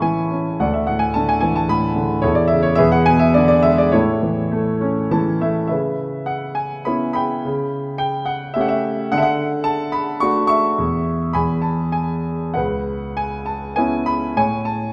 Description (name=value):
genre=classical, lyrical solo piano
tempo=97-112 BPM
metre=3/4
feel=rubato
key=A major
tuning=A4 = 440 Hz
part: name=clear concert grand piano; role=solo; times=0.0-14.9 s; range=C#2 to C#6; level=-19 LUFS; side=equal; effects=none
room=moderate concert hall reverb, RT60 2.0 s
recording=none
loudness=-19 LUFS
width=mono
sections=0.0-5.7 A section; 5.7-14.9 B section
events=grand piano fill 4.8-5.7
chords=0.0 A; 0.6 Dsus2; 2.2 A/E; 2.8 E7; 3.9 A; 5.7 C#m7; 7.4 A7/C#; 9.1 D; 10.8 N.C.; 11.3 E; 12.6 C#m7; 14.4 A